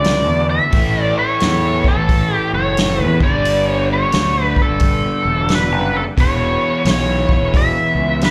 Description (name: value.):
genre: blues rock power trio and southern rock.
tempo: 88 BPM.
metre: 4/4.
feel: swing 64% on 8ths.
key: A mixolydian.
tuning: A4 = 436 Hz.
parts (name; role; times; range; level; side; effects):
biting lead guitar; melody; 0.0-8.3 s; A4 to E5; -20 LUFS; equal; overdrive, slapback echo.
overdriven tonewheel organ; sustained chords; 0.0-8.3 s; B3 to A4; -34 LUFS; equal; none.
overdriven electric guitar; riff; 0.0-8.3 s; E2 to D4; -25 LUFS; equal; spring reverb.
fuzz fingered electric bass; bass; 0.0-8.3 s; E1 to E2; -21 LUFS; equal; overdrive.
vintage drum kit; drums; 0.0-8.3 s; hi-hat, kick drum, snare drum; -20 LUFS; equal; none.
room: small room ambience.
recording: live gig heard through the venue's PA, club reverb.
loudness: -16 LUFS.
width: mono.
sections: 0.0-8.3 A section.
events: none.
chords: 0.0 D; 0.7 A; 3.1 G; 6.2 E.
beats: 0.06 | 0.74 1.42 2.10 2.78 | 3.46 4.14 4.82 5.50 | 6.18 6.86 7.54 8.21.